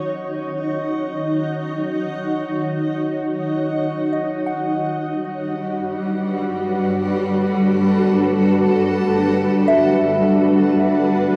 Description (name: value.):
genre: ambient.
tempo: free time.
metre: none.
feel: none.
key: unclear.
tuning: A4 = 440 Hz.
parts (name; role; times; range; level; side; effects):
granular cloud pad; sustained chords; 0.0-11.4 s; G3 to C#5; -20 LUFS; equal; built-in reverb, shimmer reverb.
soft synth bell; arpeggios; 0.0-11.4 s; C#5 to F#5; -26 LUFS; equal; chorus, phaser, delay, shimmer reverb.
room: wet concert hall reverb, RT60 2.1 s.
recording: none.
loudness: -20 LUFS.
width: mono.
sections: 0.0-11.4 A section.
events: fade-in on synth bell 0.0-11.4.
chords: 0.0 D#m7; 4.7 Gmaj7.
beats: free time.